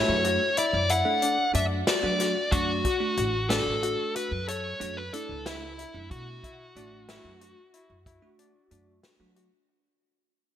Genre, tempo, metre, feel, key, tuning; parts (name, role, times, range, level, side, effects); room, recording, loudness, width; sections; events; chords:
progressive instrumental, band music in an uneven meter; 184 BPM (eighths); 11/8; straight; A4 = 436 Hz
dark smooth lead guitar; melody; 0.0-9.0 s; E4 to F#5; -28 LUFS; equal; overdrive, digital delay
bell-like tine electric piano; accompaniment; 0.0-9.5 s; A3 to A4; -35 LUFS; right 4 dB; lush chorus
clear grand piano; arpeggios; 0.0-9.6 s; D4 to A4; -33 LUFS; left 6 dB; digital delay
upright bass; bass; 0.1-9.5 s; A1 to F#3; -32 LUFS; equal
vintage drum kit; drums; 0.2-9.5 s; hi-hat, kick drum, snare drum; -31 LUFS; left 1 dB; gated reverb
moderate lush hall reverb, RT60 2.8 s; bright 1980s-style digital production; -24 LUFS; side -10 dB against mid
0.0-9.7 A section
fade-out 0.0-9.7
0.0 D